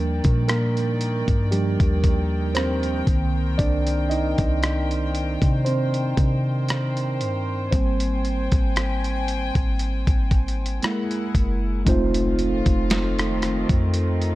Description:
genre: contemporary R&B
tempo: 58 BPM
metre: 4/4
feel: swing 54% on 16ths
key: C minor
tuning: A4 = 442 Hz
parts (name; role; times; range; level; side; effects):
- mellow tine electric piano; accompaniment; 0.0-14.3 s; Eb3 to Eb5; -25 LUFS; right 2 dB; slow stereo tremolo
- warm studio string section; sustained chords; 0.0-14.3 s; Eb3 to Ab5; -32 LUFS; left 2 dB; none
- clean 808-style bass; bass; 0.0-14.3 s; F1 to C3; -24 LUFS; equal; none
- downlifter and impact; sound effects; 0.2-3.6, 12.1-14.3 s; none; -36 LUFS; left 1 dB; none
- dusty soul sampler-style drum kit; drums; 0.2-14.3 s; hi-hat, kick drum, rim click, snare drum; -23 LUFS; equal; none
room: digital ambience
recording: dark, warm production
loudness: -20 LUFS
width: side -17 dB against mid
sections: 0.0-11.9 A section; 11.9-14.3 B section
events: tine electric piano solo 0.0-11.9; impact 11.9-14.3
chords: 0.0 Ebmaj7; 3.1 Cm7; 7.7 Abmaj7; 10.8 F#9; 11.9 F7

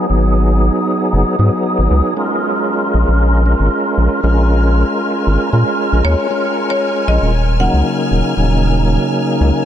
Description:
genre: deep house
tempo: 116 BPM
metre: 4/4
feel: swing 54% on 16ths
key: unclear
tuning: A4 = 440 Hz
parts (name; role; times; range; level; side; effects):
- tonewheel organ; stabs; 0.0-9.6 s; C#3 to A#4; -15 LUFS; equal; overdrive, chorus vibrato, slow rotary speaker, low-pass filter, ping-pong delay
- round analog bass; bass; 0.1-9.5 s; D#1 to A#2; -13 LUFS; equal; none
- warm studio violin section; texture; 4.2-9.7 s; G#5 to E#6; -26 LUFS; left 3 dB; none
- marimba with hard mallets; melody; 6.0-8.1 s; C#5 to F#5; -22 LUFS; left 2 dB; vintage 12-bit sampler grit, ping-pong delay
room: moderate huge ambient reverb, RT60 4.8 s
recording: dreamy mix soaked in reverb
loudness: -12 LUFS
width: side -10 dB against mid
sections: 0.0-9.7 A section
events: filter sweep on tonewheel organ 0.0-9.7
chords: 0.0 G#m7; 2.2 A#m7; 7.3 D#m7

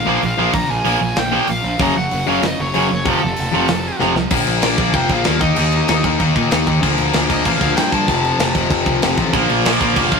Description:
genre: punk rock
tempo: 191 BPM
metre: 4/4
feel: straight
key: Bb major from 4.3 s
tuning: A4 = 441 Hz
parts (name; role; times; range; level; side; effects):
- cranked stack guitar; melody; 0.0-10.2 s; A4 to Bb5; -22 LUFS; right 1 dB; overdrive
- high-gain distorted guitar; riff; 0.0-10.2 s; F2 to Eb4; -26 LUFS; right 2 dB; distortion
- distorted electric guitar; riff; 0.1-10.2 s; F2 to Eb4; -18 LUFS; left 6 dB; overdrive
- tight distorted guitar; riff; 0.1-4.1, 9.3-10.2 s; F2 to Bb3; -20 LUFS; right 8 dB; distortion
- fuzz picked electric bass; bass; 0.1-10.2 s; F1 to Bb2; -21 LUFS; right 1 dB; overdrive
- tight metal drum kit; drums; 0.2-10.2 s; crash cymbal, hi-hat, kick drum, snare drum; -21 LUFS; equal; none
room: moderate studio reverb, RT60 0.6 s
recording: rough rehearsal-room recording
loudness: -14 LUFS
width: side -5 dB against mid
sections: 0.0-4.3 A section; 4.3-10.2 B section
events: half time 0.0-4.3; drum fill 4.0-4.3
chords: 0.0 Bb5; 1.8 Gb5; 3.1 F; 4.3 Bb; 5.4 Eb5; 6.8 Bb/D; 8.1 F; 9.3 Bb

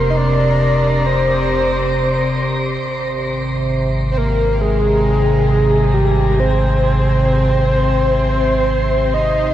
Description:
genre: ambient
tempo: free time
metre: none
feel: none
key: unclear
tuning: A4 = 440 Hz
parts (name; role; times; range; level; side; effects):
- breathy flute-like synth lead; melody; 0.0-9.5 s; G4 to Eb5; -17 LUFS; equal; analog chorus, ping-pong delay
- warm sub bass; bass; 0.0-9.5 s; F1 to Ab1; -20 LUFS; equal; none
- overtone-sweeping drone; drone; 0.0-9.5 s; C3; -19 LUFS; right 1 dB; chorus, built-in reverb
room: wet shimmer reverb, RT60 7.5 s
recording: worn, warbling old tape, cassette tape, warbly pitch drift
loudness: -14 LUFS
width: side -12 dB against mid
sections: 0.0-9.5 A section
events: none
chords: 0.0 F5; 2.8 Ab

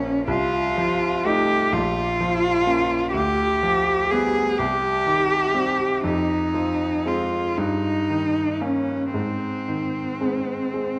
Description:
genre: classical, romantic duo for cello and grand piano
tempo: 37-42 BPM (dotted quarters)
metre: 6/8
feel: rubato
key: Ab major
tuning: A4 = 440 Hz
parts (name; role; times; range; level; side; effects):
- warm cello; melody; 0.0-11.0 s; C4 to Ab4; -24 LUFS; equal; none
- bright concert grand piano; accompaniment; 0.0-11.0 s; Bb1 to Eb4; -28 LUFS; equal; none
room: wet scoring stage reverb, RT60 1.7 s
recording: dark, warm production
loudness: -22 LUFS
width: mono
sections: 0.0-11.0 A section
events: none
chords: 0.3 F7/C; 1.7 Bbm; 3.1 G7/D; 4.6 Cm; 6.0 Fm; 7.6 Eb7/G; 9.1 Ab

